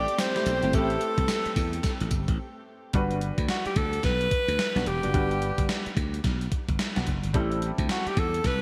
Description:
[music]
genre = R&B, new jack swing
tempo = 109 BPM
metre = 4/4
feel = swing 61% on 16ths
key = G major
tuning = A4 = 440 Hz
[part]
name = bright alto saxophone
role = melody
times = 0.0-8.6 s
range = F#4 to D5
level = -31 LUFS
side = equal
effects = delay
[part]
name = clear baby grand piano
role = accompaniment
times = 0.0-8.6 s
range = G3 to F#5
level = -39 LUFS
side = equal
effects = subtle chorus
[part]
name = warm studio string section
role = sustained chords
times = 0.0-2.9 s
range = A3 to G4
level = -39 LUFS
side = equal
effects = none
[part]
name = glassy slap bass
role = bass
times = 0.0-8.6 s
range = E1 to E2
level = -32 LUFS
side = equal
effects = none
[part]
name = gated 80s digital drum machine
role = drums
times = 0.1-8.6 s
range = hi-hat, kick drum, snare drum, tambourine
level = -31 LUFS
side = equal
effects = gated reverb, gated reverb snare, overdrive
[part]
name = funky polysynth comp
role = stabs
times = 0.4-7.6 s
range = G3 to G4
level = -36 LUFS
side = equal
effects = chorus
[sound]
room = moderate lush hall reverb, RT60 2.3 s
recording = bright 1980s-style digital production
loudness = -27 LUFS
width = mono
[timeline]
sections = 0.0-2.9 A section; 2.9-8.6 B section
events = break 2.4-2.9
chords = 0.0 Am7; 2.9 Gmaj7; 7.3 Am7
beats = 0.19 | 0.74 1.29 1.84 2.39 | 2.94 3.49 4.04 4.59 | 5.14 5.69 6.24 6.79 | 7.34 7.89 8.44

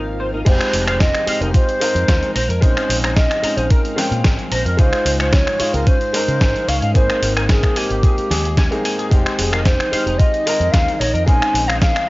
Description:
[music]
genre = nu-disco, nu disco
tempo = 111 BPM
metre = 4/4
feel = straight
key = F minor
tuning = A4 = 440 Hz
[part]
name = warm baby grand piano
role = accompaniment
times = 0.0-12.1 s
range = Ab3 to G5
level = -24 LUFS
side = left 1 dB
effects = cassette tape
[part]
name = string machine, full ensemble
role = sustained chords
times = 0.0-12.1 s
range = Ab3 to F5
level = -31 LUFS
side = equal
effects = ensemble chorus, sidechain pumping, cassette tape
[part]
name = twangy electric guitar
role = riff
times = 0.0-11.9 s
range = C4 to Bb5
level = -28 LUFS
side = left 2 dB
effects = ensemble chorus, cassette tape
[part]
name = fingered electric bass with an envelope filter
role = bass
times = 0.0-11.9 s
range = F1 to Db3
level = -22 LUFS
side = equal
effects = none
[part]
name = mellow hollow concert flute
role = melody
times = 0.2-12.1 s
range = G4 to Ab5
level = -20 LUFS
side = equal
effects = cassette tape, tape echo
[part]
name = dusty soul sampler-style drum kit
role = drums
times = 0.5-12.1 s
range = crash cymbal, finger snaps, hi-hat, snare drum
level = -22 LUFS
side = equal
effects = none
[part]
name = electronic kick drum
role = drums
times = 0.5-11.9 s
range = none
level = -15 LUFS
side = equal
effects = none
[sound]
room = light reverb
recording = home recording on cassette, nothing above 7.5 kHz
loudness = -14 LUFS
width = side -20 dB against mid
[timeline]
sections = 0.5-12.1 A section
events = drop 0.5-12.1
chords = 0.5 Fm7; 2.4 Bbm11; 4.8 Dbmaj7; 7.0 Abmaj7; 9.1 Fm7; 11.0 Bbm11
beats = | 0.47 1.01 1.55 2.09 | 2.63 3.17 3.71 4.25 | 4.79 5.33 5.87 6.41 | 6.95 7.49 8.03 8.57 | 9.11 9.65 10.20 10.74 | 11.28 11.82

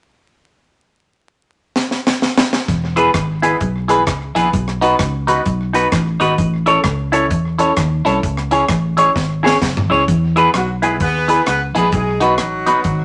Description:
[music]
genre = ska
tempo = 130 BPM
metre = 4/4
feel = swing 62% on 8ths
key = unclear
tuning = A4 = 441 Hz
[part]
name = deep reggae drum kit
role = drums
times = 1.8-13.0 s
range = hi-hat, kick drum, rim click, snare drum, toms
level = -21 LUFS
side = equal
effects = tape echo
[part]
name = fingered electric bass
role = bass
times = 2.7-13.0 s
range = E1 to E2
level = -22 LUFS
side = equal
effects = none
[part]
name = semi-hollow electric guitar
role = accompaniment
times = 3.0-12.9 s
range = D#4 to C#5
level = -18 LUFS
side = equal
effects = phaser
[part]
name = bright upright piano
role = stabs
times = 3.0-12.8 s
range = B3 to C#5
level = -24 LUFS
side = equal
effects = none
[part]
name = group handclap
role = percussion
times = 3.2-12.5 s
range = none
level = -34 LUFS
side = equal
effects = none
[part]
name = dark horn section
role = melody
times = 10.6-13.0 s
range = F#3 to B4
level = -22 LUFS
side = equal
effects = none
[sound]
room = moderate studio reverb, RT60 0.7 s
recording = vinyl crackle, nothing above 10.8 kHz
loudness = -16 LUFS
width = mono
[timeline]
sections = 0.8-2.7 A section; 2.7-10.1 B section; 10.1-13.0 C section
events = drum fill 1.8-2.7, 9.2-10.1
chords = 0.8 N.C.; 2.7 E; 4.5 B; 6.4 A; 8.2 C#m; 10.1 E; 11.9 B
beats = | 0.84 1.30 1.76 2.22 | 2.69 3.15 3.61 4.07 | 4.53 5.00 5.46 5.92 | 6.38 6.84 7.31 7.77 | 8.23 8.69 9.15 9.62 | 10.08 10.54 11.00 11.46 | 11.92 12.38 12.85

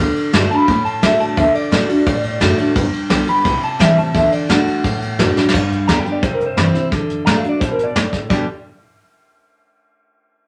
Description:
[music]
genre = rockabilly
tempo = 173 BPM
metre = 4/4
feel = straight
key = G major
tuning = A4 = 441 Hz
[part]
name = picked steel-string acoustic guitar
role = accompaniment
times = 0.0-8.4 s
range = G2 to G4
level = -20 LUFS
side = equal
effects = none
[part]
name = upright bass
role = bass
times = 0.0-8.5 s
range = F#1 to C3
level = -26 LUFS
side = equal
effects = none
[part]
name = soft brush drum kit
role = drums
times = 0.2-8.4 s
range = crash cymbal, hi-hat, kick drum, ride cymbal, snare drum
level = -21 LUFS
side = equal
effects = none
[part]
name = electric guitar through a small old amp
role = melody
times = 0.5-8.5 s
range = Bb4 to B5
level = -21 LUFS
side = equal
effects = none
[sound]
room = moderate studio reverb, RT60 0.6 s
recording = none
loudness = -16 LUFS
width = mono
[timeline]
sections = 0.0-5.5 A section; 5.5-8.3 B section; 8.3-9.7 C section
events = drum fill 5.4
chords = 0.0 D; 2.8 G; 3.5 C; 4.1 D; 5.5 G; 6.2 C; 6.9 D; 8.3 G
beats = 0.33 0.68 1.03 | 1.37 1.72 2.07 2.41 | 2.76 3.11 3.45 3.80 | 4.15 4.49 4.84 5.19 | 5.53 5.88 6.22 6.57 | 6.92 7.26 7.61 7.95 | 8.30

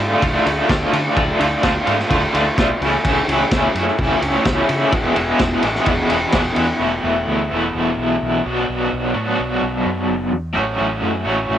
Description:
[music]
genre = indie rock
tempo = 128 BPM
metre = 4/4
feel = straight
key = unclear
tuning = A4 = 440 Hz
[part]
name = raw garage guitar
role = riff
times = 0.0-11.6 s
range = E2 to F#4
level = -17 LUFS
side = equal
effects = overdrive, tremolo, cassette tape
[part]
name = fingered electric bass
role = bass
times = 0.0-11.6 s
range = E1 to D3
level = -27 LUFS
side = equal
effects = none
[part]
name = vintage drum kit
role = drums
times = 0.2-6.7 s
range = kick drum, ride cymbal, snare drum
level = -20 LUFS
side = equal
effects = cassette tape
[sound]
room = moderate booth ambience, RT60 0.2 s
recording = home recording on cassette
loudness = -15 LUFS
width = side -10 dB against mid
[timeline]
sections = 0.0-6.8 A section; 6.8-11.6 B section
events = none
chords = 0.0 Dm; 2.8 A/C#; 4.9 E; 6.8 Esus4; 8.5 Bm; 10.6 F#m/A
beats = 0.22 0.69 | 1.16 1.63 2.10 2.57 | 3.04 3.51 3.98 4.46 | 4.93 5.40 5.87 6.34 | 6.81 7.28 7.75 8.22 | 8.69 9.16 9.63 10.10 | 10.57 11.04 11.51

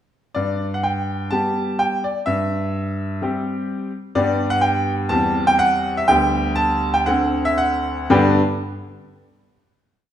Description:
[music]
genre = classical-period piano sonatina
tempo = 112-128 BPM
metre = 4/4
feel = straight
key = G major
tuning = A4 = 440 Hz
[part]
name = bright grand piano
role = solo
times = 0.3-8.4 s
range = D2 to A5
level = -18 LUFS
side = equal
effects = none
[sound]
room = wet recital hall reverb, RT60 1.4 s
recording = minimal, uncompressed stereo recording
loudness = -18 LUFS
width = side -10 dB against mid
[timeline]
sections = 0.4-8.1 A section; 8.1-10.1 final chord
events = slowing down 3.2-8.1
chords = 0.4 G; 2.3 C/G; 4.2 G; 5.1 C/E; 6.1 G/D; 7.1 D7; 8.1 G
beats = | 0.37 0.85 1.33 1.80 | 2.28 2.75 3.22 3.69 | 4.16 4.63 5.11 5.59 | 6.08 6.57 7.07 7.59 | 8.12

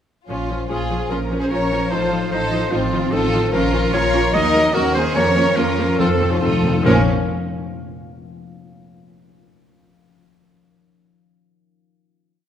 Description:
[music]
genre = classical, dramatic, fast romantic movement for symphony orchestra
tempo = 146 BPM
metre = 4/4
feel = uneven beats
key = Bb minor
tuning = A4 = 442 Hz
[part]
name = clear studio violin section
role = melody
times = 0.3-7.1 s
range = C4 to Bb4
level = -25 LUFS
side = left 1 dB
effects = none
[part]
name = clear clarinet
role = second line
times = 0.3-7.0 s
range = F4 to Eb5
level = -22 LUFS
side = equal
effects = none
[part]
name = warm symphonic violin section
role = second line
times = 0.3-7.1 s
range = Db4 to Eb5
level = -25 LUFS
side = left 1 dB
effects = none
[part]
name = rich symphonic viola section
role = accompaniment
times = 0.3-7.1 s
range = Eb3 to Eb4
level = -26 LUFS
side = right 1 dB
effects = none
[part]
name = concert harp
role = arpeggios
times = 0.3-8.6 s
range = A2 to F5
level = -24 LUFS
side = left 6 dB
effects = none
[part]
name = rich symphonic double bass section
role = bass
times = 0.3-7.1 s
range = A1 to F2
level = -25 LUFS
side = right 3 dB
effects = none
[part]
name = rich studio cello section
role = bass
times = 1.1-7.1 s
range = Bb2 to F4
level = -24 LUFS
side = right 3 dB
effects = none
[part]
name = timpani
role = percussion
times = 6.0-7.1 s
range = F2 to Bb2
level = -24 LUFS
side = left 2 dB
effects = none
[sound]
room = moderate scoring stage reverb, RT60 1.8 s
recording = none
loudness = -16 LUFS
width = side -9 dB against mid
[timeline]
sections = 0.3-6.9 A section; 6.9-8.6 final chord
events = timpani fill 6.0-6.9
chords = 0.3 Bbm; 1.9 F7/A; 3.5 Bbm; 4.3 Ebm; 5.2 Bbm/F; 6.0 F7; 6.9 Bbm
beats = | 0.29 0.70 1.11 1.51 | 1.92 2.32 2.72 3.13 | 3.53 3.94 4.35 4.75 | 5.16 5.58 5.99 6.42 | 6.86 7.28 7.71 8.14

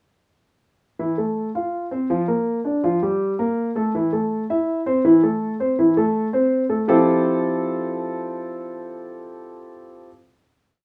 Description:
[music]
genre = jazz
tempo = 163 BPM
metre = 4/4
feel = straight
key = F major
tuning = A4 = 437 Hz
[part]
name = warm concert grand piano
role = solo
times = 1.0-10.1 s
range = E3 to F5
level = -22 LUFS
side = equal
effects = none
[sound]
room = moderate small room reverb, RT60 0.6 s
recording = rough home demo mix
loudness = -21 LUFS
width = mono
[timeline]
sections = 1.0-6.9 A section; 6.9-9.8 final chord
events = none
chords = 1.0 Fmaj7; 1.7 Fsus4; 2.5 Gm7; 3.2 Gmadd9; 3.9 Am/E; 6.9 Fmaj9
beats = | 0.99 1.36 1.73 2.10 | 2.47 2.84 3.21 3.58 | 3.94 4.31 4.68 5.04 | 5.41 5.78 6.14 6.51 | 6.88 7.25 7.61 7.98 | 8.35 8.72 9.08 9.45

